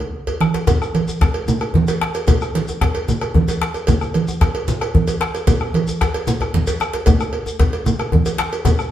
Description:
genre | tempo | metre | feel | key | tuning
west african traditional, West African drum ensemble | 150 BPM (dotted quarters) | 12/8 | straight | none | none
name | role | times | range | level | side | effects
bombo | percussion | 0.0-8.9 s | none | -21 LUFS | equal | none
cowbell | percussion | 0.0-8.8 s | none | -25 LUFS | right 4 dB | none
djembe | percussion | 0.3-8.8 s | none | -21 LUFS | left 3 dB | none
congas | percussion | 0.4-8.8 s | none | -21 LUFS | right 3 dB | none
shekere | percussion | 0.7-8.9 s | none | -26 LUFS | left 1 dB | none
room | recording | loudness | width
wet stone room reverb, RT60 1.1 s | band playing live in one room | -16 LUFS | side -11 dB against mid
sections
0.7-8.9 A section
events
drum fill 0.3-0.7, 6.4-7.1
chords
none

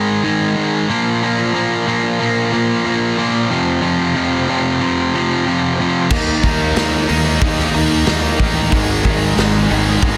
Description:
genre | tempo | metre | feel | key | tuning
hard rock | 92 BPM | 4/4 | straight | unclear | A4 = 439 Hz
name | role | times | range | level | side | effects
overdriven tonewheel organ | sustained chords | 0.0-10.2 s | Ab3 to G5 | -30 LUFS | equal | none
cranked stack guitar | riff | 0.0-10.2 s | F2 to Eb4 | -18 LUFS | equal | overdrive
cranked stack guitar | riff | 6.1-10.2 s | Ab2 to Eb4 | -24 LUFS | equal | overdrive
fuzz fingered electric bass | bass | 6.1-10.2 s | Ab1 to Eb2 | -22 LUFS | equal | overdrive
raw garage drum kit | drums | 6.1-10.2 s | crash cymbal, hi-hat, kick drum, snare drum | -19 LUFS | equal | none
room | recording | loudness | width
light reverb | dense, heavily limited modern master | -16 LUFS | mono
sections
0.0-10.2 A section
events
none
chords
0.0 Ab5; 0.9 Bb5; 3.5 F5; 6.1 Eb5; 8.7 Ab5

